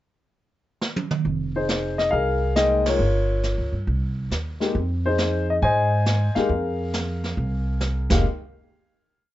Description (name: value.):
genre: jazz piano trio.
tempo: 137 BPM.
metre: 4/4.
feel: swing 68% on 8ths.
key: F minor.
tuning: A4 = 440 Hz.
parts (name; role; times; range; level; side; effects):
jazz brush drum kit; drums; 0.8-8.2 s; brushed snare drum, crash cymbal, hi-hat, kick drum, ride cymbal, snare drum, toms; -26 LUFS; right 2 dB; none.
upright bass; bass; 1.2-8.2 s; F1 to Ab2; -24 LUFS; right 1 dB; none.
dark baby grand piano; melody; 1.6-8.2 s; Ab3 to Ab5; -23 LUFS; left 2 dB; plate reverb.
room: light reverb.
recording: nothing above 7.8 kHz.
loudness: -20 LUFS.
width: side -14 dB against mid.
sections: 0.0-1.3 pickup bar; 1.3-8.2 A section; 8.2-9.3 final hit.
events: drum fill 0.8-1.3; band accent 2.8.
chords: 0.0 N.C.; 1.3 Fm11; 3.0 Gm7b5; 3.9 Cm; 4.8 Fm11; 8.2 N.C..